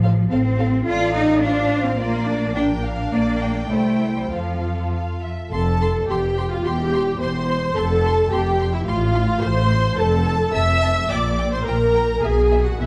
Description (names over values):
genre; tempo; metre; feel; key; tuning
quick classical-period movement for string orchestra; 107 BPM; 2/4; rubato; F major; A4 = 438 Hz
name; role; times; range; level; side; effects
warm symphonic violin section; melody; 0.0-12.9 s; D5 to C6; -34 LUFS; equal; none
warm symphonic violin section; second line; 0.0-12.9 s; A4 to E6; -32 LUFS; equal; none
rich studio viola section; accompaniment; 0.0-12.9 s; D4 to E5; -25 LUFS; equal; none
rich symphonic cello section; bass; 0.0-12.9 s; E2 to F4; -25 LUFS; equal; none
rich symphonic double bass section; bass; 0.0-12.9 s; E1 to F2; -25 LUFS; equal; none
room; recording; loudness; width
moderate scoring stage reverb, RT60 1.6 s; dark, warm production; -20 LUFS; mono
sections
0.0-5.5 A section; 5.5-12.9 A section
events
none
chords
0.0 F/A; 0.9 F7/A; 2.0 Bb; 3.1 Gm/Bb; 3.7 C; 4.3 F; 6.7 C/E; 7.8 F; 8.9 F/A; 10.0 Fmaj7; 11.1 Gm/Bb; 12.2 E5/B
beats
0.31 | 0.87 1.44 | 2.00 2.56 | 3.13 3.71 | 4.32 4.93 | 5.52 6.09 | 6.66 7.21 | 7.76 8.32 | 8.87 9.43 | 9.97 10.53 | 11.10 11.66 | 12.22 12.79